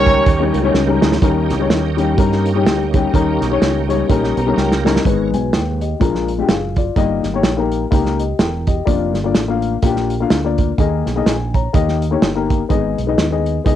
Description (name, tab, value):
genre	uptempo gospel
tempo	126 BPM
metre	4/4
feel	swing 58% on 8ths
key	G# harmonic minor from 5.0 s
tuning	A4 = 439 Hz
part	warm horn section	melody	0.0-0.7 s	C#4 to C#5	-16 LUFS	right 2 dB	cassette tape
part	dark upright piano	accompaniment	0.0-13.8 s	G2 to A#5	-18 LUFS	left 7 dB	cassette tape
part	bright tonewheel organ	sustained chords	0.0-5.3 s	D#3 to C#5	-25 LUFS	right 10 dB	fast rotary speaker, chorus vibrato, cassette tape
part	fingered electric bass	bass	0.0-13.8 s	E1 to G2	-21 LUFS	right 2 dB	none
part	warm soul drum kit	drums	0.1-13.8 s	hi-hat, kick drum, snare drum	-17 LUFS	right 2 dB	none
room	light reverb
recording	home recording on cassette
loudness	-14 LUFS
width	side -11 dB against mid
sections	0.0-1.2 A section; 1.2-5.0 B section; 5.0-13.8 C section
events	drum fill 0.7-1.2, 4.6-5.0; upright piano fill 4.1-5.0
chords	0.0 D#7; 5.0 G#m; 6.0 A#7; 7.0 D#/G; 8.9 A#/E#; 10.8 D#sus4; 11.7 D#; 12.7 G#m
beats	0.27 0.74 | 1.22 1.70 2.18 2.66 | 3.14 3.62 4.09 4.57 | 5.05 5.53 6.01 6.48 | 6.96 7.44 7.92 8.39 | 8.87 9.35 9.83 10.31 | 10.79 11.27 11.74 12.22 | 12.70 13.18 13.66